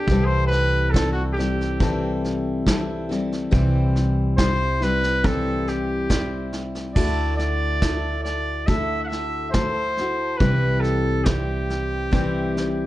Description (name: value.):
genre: acoustic folk duo or small band.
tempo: 70 BPM.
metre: 4/4.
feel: straight.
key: D mixolydian.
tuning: A4 = 440 Hz.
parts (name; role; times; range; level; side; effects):
clear trumpet; melody; 0.0-12.9 s; F#4 to F#5; -25 LUFS; equal; none.
picked steel-string acoustic guitar; accompaniment; 0.0-12.9 s; C3 to C5; -25 LUFS; left 2 dB; none.
upright bass; bass; 0.0-12.9 s; C2 to D2; -25 LUFS; right 1 dB; none.
vintage brush drum kit; drums; 0.1-12.7 s; crash cymbal, kick drum, snare drum; -24 LUFS; equal; none.
room: light reverb.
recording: dark, warm production, nothing above 10.4 kHz.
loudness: -20 LUFS.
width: side -16 dB against mid.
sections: 0.0-7.0 A section; 7.0-12.9 B section.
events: trumpet solo 0.0-7.0.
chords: 0.1 Am7/C; 3.5 C; 7.0 Dadd9; 10.4 C.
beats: | 0.08 0.94 1.80 2.66 | 3.53 4.39 5.25 6.11 | 6.97 7.83 8.69 9.55 | 10.41 11.28 12.14.